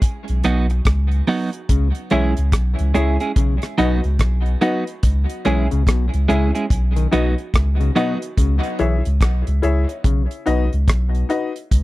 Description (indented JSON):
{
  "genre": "dub reggae",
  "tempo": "72 BPM",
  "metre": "4/4",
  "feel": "swing 62% on 16ths",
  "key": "unclear",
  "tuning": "A4 = 440 Hz",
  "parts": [
    { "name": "damped 70s drum kit", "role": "drums", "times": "0.0-11.8 s", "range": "hi-hat, kick drum, rim click", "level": "-18 LUFS", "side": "equal", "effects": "none" },
    { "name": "warm sub bass", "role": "bass", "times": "0.3-11.8 s", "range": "B1 to C#2", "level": "-18 LUFS", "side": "equal", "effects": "none" },
    { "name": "clean electric guitar", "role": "accompaniment", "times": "0.4-8.2 s", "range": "F#3 to G#4", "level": "-23 LUFS", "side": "right 3 dB", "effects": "spring reverb, tape echo" },
    { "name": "overdriven clav", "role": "arpeggios", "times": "1.7-10.6 s", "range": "B2 to E3", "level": "-28 LUFS", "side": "left 6 dB", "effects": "tape echo" },
    { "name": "clear upright piano", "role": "stabs", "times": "2.1-11.5 s", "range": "D#4 to E5", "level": "-24 LUFS", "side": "left 4 dB", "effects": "tape echo" }
  ],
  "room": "little or no reverb",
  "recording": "dry, close 1970s-style studio recording",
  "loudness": "-16 LUFS",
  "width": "side -18 dB against mid",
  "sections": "0.0-11.8 A section",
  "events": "break 0.0-1.7",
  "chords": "0.0 B; 1.7 C#m; 3.4 B; 5.0 C#m; 6.7 B; 8.4 C#m; 10.0 B"
}